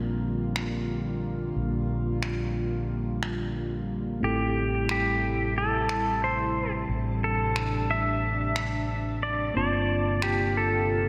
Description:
sunset chillout; 90 BPM; 4/4; swing 56% on 16ths; A4 = 441 Hz
mellow tine electric piano; accompaniment; 0.0-11.1 s; A3 to A5; -38 LUFS; equal; slapback echo, delay
airy breathy pad; sustained chords; 0.0-11.1 s; C3 to A5; -35 LUFS; equal; chorus
fretless electric bass; bass; 0.0-11.1 s; G1 to Bb1; -32 LUFS; equal; ensemble chorus
electronic finger snaps; drums; 0.6-10.4 s; -38 LUFS; equal; low-pass filter on cymbals, low-pass filter on snare
pedal steel guitar; melody; 4.2-11.1 s; G4 to E5; -30 LUFS; equal; slapback echo, delay
wet lush hall reverb, RT60 2.6 s; big arena sound; -28 LUFS; mono
0.0-11.1 A section
0.0 Bb6; 4.2 Am7; 9.6 Gm11
0.23 0.89 | 1.56 2.23 2.89 3.56 | 4.22 4.89 5.56 6.22 | 6.89 7.56 8.22 8.89 | 9.56 10.22 10.89

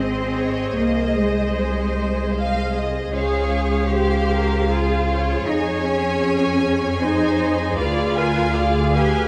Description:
classical, slow romantic movement for string orchestra; 77 BPM; 3/4; rubato; A4 = 437 Hz
rich studio violin section; melody; 0.0-9.3 s; Eb5 to Ab5; -31 LUFS; equal
clear symphonic violin section; second line; 0.0-9.3 s; Ab4 to F5; -31 LUFS; equal
clear symphonic viola section; accompaniment; 0.0-9.3 s; Ab4 to F5; -28 LUFS; equal
rich studio double bass section; bass; 0.0-9.3 s; Ab1 to F2; -25 LUFS; equal
rich symphonic cello section; bass; 0.0-9.3 s; Ab3 to Ab4; -25 LUFS; equal
moderate scoring stage reverb, RT60 2.1 s; dark, warm production; -20 LUFS; mono
0.0-9.3 A section
0.0 Ab; 0.8 Ab/C; 3.1 Dbmaj7; 5.5 Db/F; 7.8 Ddim7
| 0.78 1.56 2.35 | 3.13 3.92 4.70 | 5.47 6.22 7.01 | 7.79 8.55

